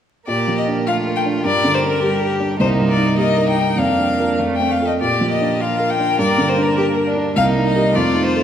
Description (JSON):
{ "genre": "quick classical-period movement for piano quartet", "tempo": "102 BPM", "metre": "2/4", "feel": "rubato", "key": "Bb major", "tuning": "A4 = 440 Hz", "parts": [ { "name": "clear violin", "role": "melody", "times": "0.3-8.4 s", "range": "Bb4 to G5", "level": "-19 LUFS", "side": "left 3 dB", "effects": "none" }, { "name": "clear violin", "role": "second line", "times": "0.3-8.4 s", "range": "D4 to Bb4", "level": "-24 LUFS", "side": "left 1 dB", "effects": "none" }, { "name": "rich cello", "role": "second line", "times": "0.3-8.4 s", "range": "G3 to Bb3", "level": "-24 LUFS", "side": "right 6 dB", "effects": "none" }, { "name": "warm grand piano", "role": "accompaniment", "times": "0.3-8.4 s", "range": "C2 to Bb4", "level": "-19 LUFS", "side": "right 1 dB", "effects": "none" } ], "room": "wet concert hall reverb, RT60 2.5 s", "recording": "vinyl crackle", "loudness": "-15 LUFS", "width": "side -9 dB against mid", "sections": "0.3-8.4 A section", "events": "none", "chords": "0.3 Bb; 1.4 Gm; 2.6 Cm7; 3.8 Bb/F; 4.4 F; 5.0 Bb; 6.2 Gm; 7.4 Cm7" }